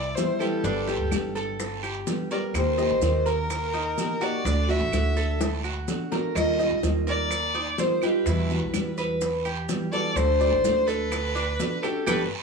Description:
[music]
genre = latin, Cuban son and guajira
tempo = 126 BPM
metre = 4/4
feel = straight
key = unclear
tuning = A4 = 440 Hz
[part]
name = warm violin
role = melody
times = 0.0-12.2 s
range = A4 to E5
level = -27 LUFS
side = left 2 dB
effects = none
[part]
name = Cuban tres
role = arpeggios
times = 0.0-12.2 s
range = D4 to Eb5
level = -32 LUFS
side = right 3 dB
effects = none
[part]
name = upright bass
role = bass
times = 0.0-12.2 s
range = G1 to E2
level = -28 LUFS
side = right 1 dB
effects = none
[part]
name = nylon-string guitar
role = accompaniment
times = 0.2-12.2 s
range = B2 to G4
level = -28 LUFS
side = right 1 dB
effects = none
[part]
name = bongos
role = percussion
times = 0.2-12.2 s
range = none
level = -33 LUFS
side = left 2 dB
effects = none
[part]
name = guiro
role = percussion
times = 0.2-12.2 s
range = none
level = -39 LUFS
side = right 7 dB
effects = none
[part]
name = maracas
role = percussion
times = 0.2-12.2 s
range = none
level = -41 LUFS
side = right 6 dB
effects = none
[part]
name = claves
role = percussion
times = 0.4-12.2 s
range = none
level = -36 LUFS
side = right 10 dB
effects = none
[sound]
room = light reverb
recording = none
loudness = -23 LUFS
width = side -4 dB against mid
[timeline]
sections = 0.0-12.4 A section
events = drum fill 5.4-6.4; band accent 12.1-12.4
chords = 0.0 Cmaj7; 0.6 Gadd9; 2.5 Eb; 4.5 D; 6.4 Ebadd9; 8.3 Emadd9; 10.2 D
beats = 0.17 | 0.65 1.12 1.60 2.07 | 2.55 3.03 3.50 3.98 | 4.45 4.93 5.40 5.88 | 6.36 6.83 7.31 7.78 | 8.26 8.74 9.21 9.69 | 10.17 10.64 11.12 11.60 | 12.07

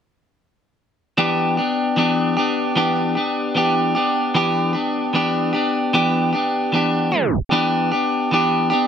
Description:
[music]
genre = indie pop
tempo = 76 BPM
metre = 4/4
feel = straight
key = E minor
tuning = A4 = 443 Hz
[part]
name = clean electric guitar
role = solo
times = 1.2-8.9 s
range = E3 to G4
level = -17 LUFS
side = equal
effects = lush chorus, warbly pitch drift
[sound]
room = moderate spring reverb, RT60 2.2 s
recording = tape stop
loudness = -17 LUFS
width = side -8 dB against mid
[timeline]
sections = 1.2-7.5 A section; 7.5-8.9 B section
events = tape stop 7.1-7.5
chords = 1.2 Em7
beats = | 1.18 1.97 2.76 3.55 | 4.34 5.13 5.93 6.72 | 7.51 8.30

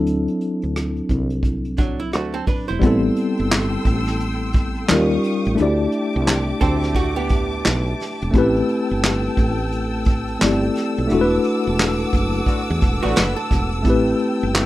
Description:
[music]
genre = R&B, neo-soul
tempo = 87 BPM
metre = 4/4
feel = swing 61% on 16ths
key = A dorian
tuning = A4 = 439 Hz
[part]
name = mellow tine electric piano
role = accompaniment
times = 0.0-14.7 s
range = F#3 to D5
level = -21 LUFS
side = left 2 dB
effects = medium stereo tremolo
[part]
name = woody fretless electric bass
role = bass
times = 0.0-14.7 s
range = E1 to E2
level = -23 LUFS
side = equal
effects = none
[part]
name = vintage brush drum kit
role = drums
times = 0.1-14.7 s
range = handclaps, hi-hat, kick drum, rim click, snare drum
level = -20 LUFS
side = equal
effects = none
[part]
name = archtop guitar, miked and amplified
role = second line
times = 1.8-8.2, 13.0-13.8 s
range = F#3 to C5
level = -25 LUFS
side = right 5 dB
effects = none
[part]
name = dark studio string section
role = sustained chords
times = 2.8-14.7 s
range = G4 to E6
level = -28 LUFS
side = equal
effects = none
[part]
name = mellow horn section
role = stabs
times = 12.5-13.2 s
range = F#3 to F#4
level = -27 LUFS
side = left 3 dB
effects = none
[sound]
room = light reverb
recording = rough home demo mix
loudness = -17 LUFS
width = side -16 dB against mid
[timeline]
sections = 0.0-2.8 A section; 2.8-14.7 B section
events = band accent 11.1-13.8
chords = 0.0 D9; 2.8 Am7; 4.9 D#9; 5.6 D9sus4; 8.3 Am7; 11.1 E9sus4; 13.8 Am7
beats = | 0.06 0.75 1.44 2.12 | 2.81 3.50 4.19 4.88 | 5.57 6.26 6.95 7.64 | 8.33 9.02 9.71 10.40 | 11.09 11.78 12.47 13.16 | 13.85 14.54

